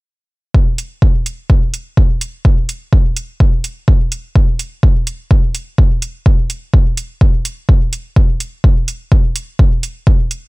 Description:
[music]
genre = techno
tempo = 126 BPM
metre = 4/4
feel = swing 54% on 16ths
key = none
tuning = none
[part]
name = electronic kick drum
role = drums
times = 0.5-10.2 s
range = none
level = -10 LUFS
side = equal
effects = none
[part]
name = electronic hi-hat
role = drums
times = 0.8-10.4 s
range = none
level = -23 LUFS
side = right 3 dB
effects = none
[sound]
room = digital ambience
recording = none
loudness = -12 LUFS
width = side -23 dB against mid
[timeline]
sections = 0.5-10.5 A section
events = none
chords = none

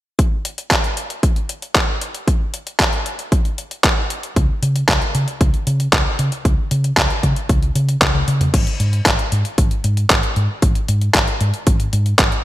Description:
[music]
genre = italo disco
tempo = 115 BPM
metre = 4/4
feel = straight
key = unclear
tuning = A4 = 435 Hz
[part]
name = detuned 8-bit digital drum machine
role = drums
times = 0.2-12.4 s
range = crash cymbal, handclaps, hi-hat, toms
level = -18 LUFS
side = equal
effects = overdrive
[part]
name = electronic kick drum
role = drums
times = 0.2-12.3 s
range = none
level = -18 LUFS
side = equal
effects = overdrive
[part]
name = hollow-body short-scale fingered electric bass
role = bass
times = 4.4-12.3 s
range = G#1 to C#3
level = -18 LUFS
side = equal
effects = none
[sound]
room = light reverb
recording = bright 1980s-style digital production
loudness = -15 LUFS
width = side -15 dB against mid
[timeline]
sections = 0.2-8.5 A section; 8.5-12.4 B section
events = drum fill 8.0-8.5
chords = none

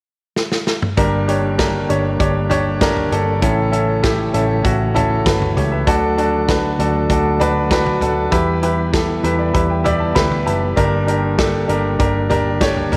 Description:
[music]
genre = piano-driven pop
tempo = 98 BPM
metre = 4/4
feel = straight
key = unclear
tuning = A4 = 442 Hz
[part]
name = natural country drum kit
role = drums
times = 0.4-13.0 s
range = hi-hat, kick drum, snare drum, toms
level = -23 LUFS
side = equal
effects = none
[part]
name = bright upright piano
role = accompaniment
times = 1.0-13.0 s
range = G2 to B5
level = -20 LUFS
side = equal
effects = none
[part]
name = tonewheel organ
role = sustained chords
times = 1.0-13.0 s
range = C#3 to B3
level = -26 LUFS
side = equal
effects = chorus vibrato, stopped rotary speaker
[part]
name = vintage muted fingered electric bass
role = bass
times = 1.0-13.0 s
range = F#1 to E2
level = -24 LUFS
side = equal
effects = none
[sound]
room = moderate echo chamber reverb, RT60 2.0 s, studio ambience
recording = none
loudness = -17 LUFS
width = mono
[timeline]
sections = 1.0-13.0 A section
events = drum fill 0.4-1.0; upright piano fill 8.9-10.8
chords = 0.0 N.C.; 1.0 Gm; 3.4 A; 5.9 D; 8.3 Em; 10.8 Gm

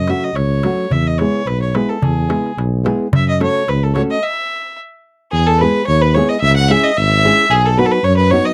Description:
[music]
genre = balkan folk, Balkan wedding band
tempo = 109 BPM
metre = 2/4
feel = swing 55% on 16ths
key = E major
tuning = A4 = 440 Hz
[part]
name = warm fiddle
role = melody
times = 0.0-8.5 s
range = G#4 to F#5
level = -19 LUFS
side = equal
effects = none
[part]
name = mellow tuba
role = bass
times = 0.0-8.4 s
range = G#1 to F#2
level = -18 LUFS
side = equal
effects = none
[part]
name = nylon-string guitar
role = accompaniment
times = 0.1-8.5 s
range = F#3 to A4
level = -20 LUFS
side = equal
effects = none
[part]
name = darbuka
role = percussion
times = 0.1-4.1 s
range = none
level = -22 LUFS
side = equal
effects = none
[part]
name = rich violin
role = second line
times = 5.3-8.5 s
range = G#4 to F#5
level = -26 LUFS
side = equal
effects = none
[sound]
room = light reverb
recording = dry, close 1970s-style studio recording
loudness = -15 LUFS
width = mono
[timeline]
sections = 0.0-5.3 A section; 5.3-8.5 B section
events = speeding up 0.0-8.5; stop 4.2-5.3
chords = 0.0 F#m; 0.9 E; 3.1 F#m; 4.2 N.C.; 5.3 E; 6.4 C#m; 7.5 B

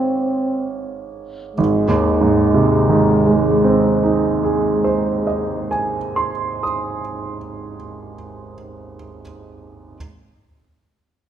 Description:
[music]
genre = classical, romantic duo for French horn and grand piano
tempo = 39 BPM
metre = 4/4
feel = rubato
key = Ab major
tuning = A4 = 440 Hz
[part]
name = warm French horn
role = melody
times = 0.0-5.7 s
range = Ab3 to C4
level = -19 LUFS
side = left 2 dB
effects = none
[part]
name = bright baby grand piano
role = accompaniment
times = 0.0-10.0 s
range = Ab1 to Eb6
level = -18 LUFS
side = right 4 dB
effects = none
[sound]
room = wet recital hall reverb, RT60 1.6 s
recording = minimal, uncompressed stereo recording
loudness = -15 LUFS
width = side -10 dB against mid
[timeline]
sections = 0.0-1.6 A section; 1.6-7.7 B section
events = slowing down 0.0-1.6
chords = 0.0 Db/Ab; 1.6 Ab

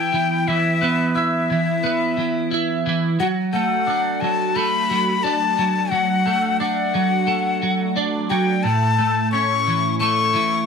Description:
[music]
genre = rock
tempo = 88 BPM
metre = 4/4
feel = straight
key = unclear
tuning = A4 = 444 Hz
[part]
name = breathy bright jazz flute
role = melody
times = 0.0-10.7 s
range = E5 to C#6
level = -21 LUFS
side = left 6 dB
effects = slapback echo
[part]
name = twelve-string electric guitar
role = riff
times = 0.0-10.7 s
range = A2 to E4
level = -20 LUFS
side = right 3 dB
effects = phaser, double-tracked left and right
[sound]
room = moderate echo chamber reverb, RT60 1.2 s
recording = none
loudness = -17 LUFS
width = side -6 dB against mid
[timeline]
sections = 0.0-10.7 A section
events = none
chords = 0.0 E5; 3.2 D/F#; 8.6 A

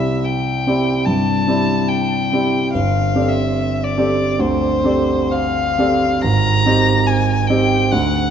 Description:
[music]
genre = classical, impressionist duo for violin and grand piano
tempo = 63-74 BPM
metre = 4/4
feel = rubato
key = C major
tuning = A4 = 440 Hz
[part]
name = rich violin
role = melody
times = 0.0-8.3 s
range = C5 to Bb5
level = -20 LUFS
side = left 3 dB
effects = none
[part]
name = clear grand piano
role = accompaniment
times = 0.0-8.3 s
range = G1 to D5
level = -16 LUFS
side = right 1 dB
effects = none
[sound]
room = wet scoring stage reverb, RT60 2.0 s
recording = dark, warm production, nothing above 7.8 kHz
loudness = -14 LUFS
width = side -8 dB against mid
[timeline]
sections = 0.0-8.3 A section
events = none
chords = 0.0 Cadd9; 2.7 G11; 6.2 Abmaj7

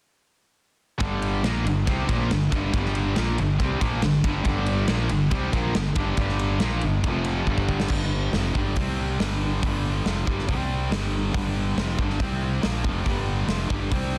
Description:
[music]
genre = hard rock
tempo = 139 BPM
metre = 4/4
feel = straight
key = unclear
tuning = A4 = 439 Hz
[part]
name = distorted electric guitar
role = riff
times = 1.0-7.9 s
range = F2 to C4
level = -31 LUFS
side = equal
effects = distortion
[part]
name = scooped high-gain guitar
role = riff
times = 1.0-14.2 s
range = F2 to C4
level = -30 LUFS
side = equal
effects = distortion
[part]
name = fuzz fingered electric bass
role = bass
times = 1.0-14.2 s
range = F1 to C2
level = -29 LUFS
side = equal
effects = overdrive
[part]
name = big rock drum kit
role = drums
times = 1.0-14.0 s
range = crash cymbal, hi-hat, kick drum, ride cymbal, snare drum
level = -30 LUFS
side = equal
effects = none
[sound]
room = little or no reverb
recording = dense, heavily limited modern master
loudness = -24 LUFS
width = mono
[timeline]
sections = 1.0-7.9 A section; 7.9-14.2 B section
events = drum fill 7.5-7.9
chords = 1.0 G5; 7.0 F5; 7.5 G5; 8.8 C5; 9.2 G5; 10.5 C5; 10.9 G5; 12.2 C5; 12.6 G5

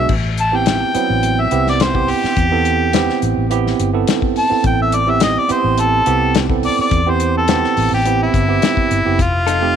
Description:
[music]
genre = straight-eighth soul blues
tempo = 106 BPM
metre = 4/4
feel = straight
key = A minor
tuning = A4 = 440 Hz
[part]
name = clear harmonica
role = melody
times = 0.0-9.8 s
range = E4 to A5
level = -17 LUFS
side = left 1 dB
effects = overdrive
[part]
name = barky tine electric piano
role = accompaniment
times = 0.0-9.8 s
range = F#3 to A4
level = -19 LUFS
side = right 11 dB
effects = none
[part]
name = vintage muted fingered electric bass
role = bass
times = 0.0-9.8 s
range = F1 to E2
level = -20 LUFS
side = left 2 dB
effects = none
[part]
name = warm soul drum kit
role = drums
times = 0.1-9.6 s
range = crash cymbal, hi-hat, kick drum, snare drum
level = -20 LUFS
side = left 5 dB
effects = none
[part]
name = direct-recorded clean electric guitar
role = stabs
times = 9.5-9.7 s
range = F3 to A4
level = -25 LUFS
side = left 13 dB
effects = analog chorus
[sound]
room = light reverb, small room ambience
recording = 1960s-style stereo with parts hard left and right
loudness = -13 LUFS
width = side -8 dB against mid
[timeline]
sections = 0.1-9.8 A section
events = harmonica solo 0.0-9.8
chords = 0.1 Am9; 9.2 F7

